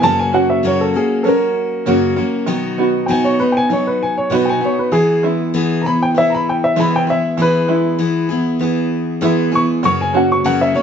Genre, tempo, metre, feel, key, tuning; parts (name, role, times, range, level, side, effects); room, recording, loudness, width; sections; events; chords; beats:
acoustic folk duo or small band; 98 BPM; 4/4; straight; E major; A4 = 442 Hz
warm upright piano; melody; 0.0-10.8 s; G#4 to C#6; -16 LUFS; equal
picked steel-string acoustic guitar; accompaniment; 0.0-10.8 s; F#2 to G#4; -18 LUFS; left 3 dB
open-back banjo; arpeggios; 0.0-10.8 s; D#3 to F#4; -19 LUFS; right 4 dB
light reverb; nothing above 7.8 kHz; -13 LUFS; side -7 dB against mid
0.0-10.8 A section
upright piano solo 0.0-10.8
0.0 F#; 2.5 B; 4.9 E; 9.8 F#
| 0.03 0.64 1.25 1.86 | 2.48 3.09 3.70 4.32 | 4.93 5.54 6.15 6.77 | 7.38 7.99 8.61 9.22 | 9.83 10.45